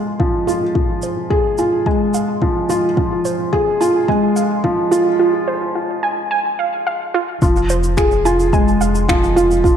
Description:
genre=piano and strings electronica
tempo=108 BPM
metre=4/4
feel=straight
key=F minor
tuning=A4 = 439 Hz
part: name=felt-muted upright piano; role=riff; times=0.0-9.8 s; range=F3 to Ab4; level=-16 LUFS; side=equal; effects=digital delay
part: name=warbly dusty pluck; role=arpeggios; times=0.2-9.7 s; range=F4 to Ab5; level=-21 LUFS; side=right 3 dB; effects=chorus, sidechain pumping, digital delay
part: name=electronic kick drum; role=drums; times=0.2-9.8 s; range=none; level=-19 LUFS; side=equal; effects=none
part: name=shaker and finger snaps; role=drums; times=0.5-9.8 s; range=none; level=-28 LUFS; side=right 2 dB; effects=high-pass filter on perc, high-pass filter on snare, high-pass filter on room
part: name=warm sub bass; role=bass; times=7.4-9.8 s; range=F1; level=-20 LUFS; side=equal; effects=sidechain pumping
room=moderate echo chamber reverb, RT60 2.0 s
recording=dark, warm production, high-pass filter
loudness=-14 LUFS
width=side -8 dB against mid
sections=0.0-7.4 A section; 7.4-9.8 B section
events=build-up 0.0-7.4; filter sweep 0.0-7.4; break 5.2-7.4; drop 7.4-9.8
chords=0.0 Fm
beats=0.20 | 0.76 1.31 1.87 2.42 | 2.98 3.53 4.09 4.64 | 5.20 5.75 6.31 6.87 | 7.42 7.98 8.53 9.09 | 9.64

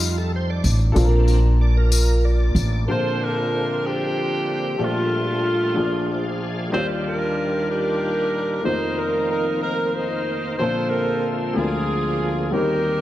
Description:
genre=slow gospel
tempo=62 BPM (dotted quarters)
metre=6/8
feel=straight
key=Bb major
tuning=A4 = 439 Hz
part: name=warm upright piano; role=accompaniment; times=0.0-13.0 s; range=F1 to A5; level=-26 LUFS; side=left 2 dB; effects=wide subtle chorus
part: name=bright tonewheel organ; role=sustained chords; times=0.0-13.0 s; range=D2 to F5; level=-27 LUFS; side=right 1 dB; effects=slow rotary speaker, overdrive, chorus vibrato
part: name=upright bass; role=bass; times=0.0-2.8 s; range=A1 to F2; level=-17 LUFS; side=equal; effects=none
part: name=tambourine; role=percussion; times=0.6-2.9 s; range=none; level=-29 LUFS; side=left 6 dB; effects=none
part: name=bright saxophone section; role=melody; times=2.9-13.0 s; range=A3 to C5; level=-23 LUFS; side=equal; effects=none
room=moderate plate reverb, RT60 2.5 s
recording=dreamy mix soaked in reverb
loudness=-19 LUFS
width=side -14 dB against mid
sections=0.0-2.9 A section; 2.9-13.0 B section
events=tonewheel organ solo 0.0-2.9; tonewheel organ fill 5.8-6.7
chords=0.0 F9; 1.0 Bbmaj7; 2.9 Bbmaj9; 4.8 Gm9/Bb; 5.8 Bb7; 6.7 Ebmaj9; 8.7 F7sus4; 10.6 Bbmaj9; 11.6 Bb7/D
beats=0.01 | 0.97 1.92 | 2.88 3.84 | 4.80 5.76 | 6.73 7.69 | 8.66 9.62 | 10.59 11.56 | 12.53

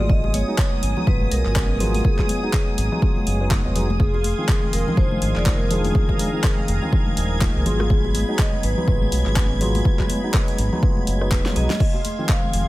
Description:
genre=deep house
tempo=123 BPM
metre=4/4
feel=swing 57% on 16ths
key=unclear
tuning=A4 = 441 Hz
part: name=vibraphone with medium hard mallets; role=melody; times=0.0-12.7 s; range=Ab4 to F5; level=-29 LUFS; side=equal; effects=ping-pong delay
part: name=warm analog pad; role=sustained chords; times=0.0-12.7 s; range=Ab4 to Eb6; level=-33 LUFS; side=equal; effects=chorus, tremolo, sidechain pumping
part: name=tine electric piano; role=stabs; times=0.0-12.6 s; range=Eb3 to F4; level=-26 LUFS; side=equal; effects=phaser, sidechain pumping, ping-pong delay
part: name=round analog bass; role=bass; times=0.0-12.6 s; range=Eb1 to C2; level=-23 LUFS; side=equal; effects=sidechain pumping
part: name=string machine, violins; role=texture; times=0.0-12.7 s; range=Eb6 to Ab6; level=-34 LUFS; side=equal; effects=ensemble chorus, sidechain pumping
part: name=electronic kick drum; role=drums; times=0.1-12.4 s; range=none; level=-20 LUFS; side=equal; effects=none
part: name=bongos and congas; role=percussion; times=0.2-12.5 s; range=none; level=-30 LUFS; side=left 2 dB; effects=none
part: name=deep house drum kit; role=drums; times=0.3-12.6 s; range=crash cymbal, handclaps, hi-hat, rim click, snare drum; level=-29 LUFS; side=equal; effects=none
room=digital ambience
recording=none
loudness=-18 LUFS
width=side -17 dB against mid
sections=0.0-12.7 A section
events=drum fill 11.4-11.8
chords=0.1 Abm7; 4.0 Fm7; 7.9 Abm7; 11.8 Fm7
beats=| 0.10 0.58 1.07 1.56 | 2.05 2.54 3.02 3.51 | 4.00 4.49 4.97 5.46 | 5.95 6.44 6.93 7.41 | 7.90 8.39 8.88 9.37 | 9.85 10.34 10.83 11.32 | 11.80 12.29

